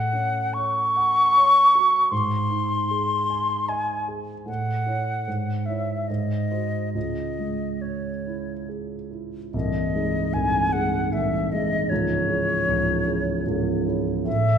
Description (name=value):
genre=classical, romantic duo for flute and grand piano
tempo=67-78 BPM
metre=3/4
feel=rubato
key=C# minor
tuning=A4 = 443 Hz
part: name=mellow silver concert flute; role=melody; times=0.0-14.6 s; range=C#5 to C#6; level=-22 LUFS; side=left 1 dB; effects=none
part: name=dark grand piano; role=accompaniment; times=0.0-14.6 s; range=B#0 to G#5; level=-25 LUFS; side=right 1 dB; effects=none
room=wet recital hall reverb, RT60 1.5 s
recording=recorded in a church or concert hall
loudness=-21 LUFS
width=side -8 dB against mid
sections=0.0-9.5 A section; 9.5-14.6 B section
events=none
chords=0.0 F#m/A; 2.1 G#; 4.5 A; 5.3 C#m/G#; 6.1 G#7; 7.0 C#m; 9.5 G#/B#; 11.9 C#m